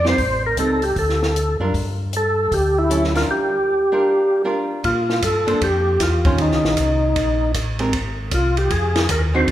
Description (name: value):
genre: soul jazz organ trio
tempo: 155 BPM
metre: 4/4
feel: swing 65% on 8ths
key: unclear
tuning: A4 = 440 Hz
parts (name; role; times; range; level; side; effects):
- overdriven tonewheel organ; melody; 0.0-9.5 s; Eb4 to C5; -19 LUFS; equal; slow rotary speaker, chorus vibrato
- archtop guitar, miked and amplified; accompaniment; 0.0-9.5 s; D3 to C5; -24 LUFS; right 2 dB; none
- mellow tonewheel organ; bass; 0.0-9.5 s; Ab1 to Bb2; -22 LUFS; equal; slow rotary speaker
- compact cocktail drum kit; drums; 0.1-9.5 s; hi-hat, kick drum, ride cymbal, snare drum; -24 LUFS; equal; none
room: wet recital hall reverb, RT60 1.7 s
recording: recorded in a church or concert hall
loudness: -16 LUFS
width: side -12 dB against mid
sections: 0.0-4.8 A section; 4.8-9.5 B section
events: none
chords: 0.2 Am7b5; 1.0 D; 1.7 Gm7; 4.8 Bbmaj7sus2; 6.4 Eb6; 7.9 Ab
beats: | 0.18 0.57 0.96 1.35 | 1.74 2.12 2.51 2.90 | 3.29 3.68 4.06 4.45 | 4.84 5.22 5.61 6.00 | 6.38 6.77 7.16 7.54 | 7.93 8.32 8.70 9.09 | 9.47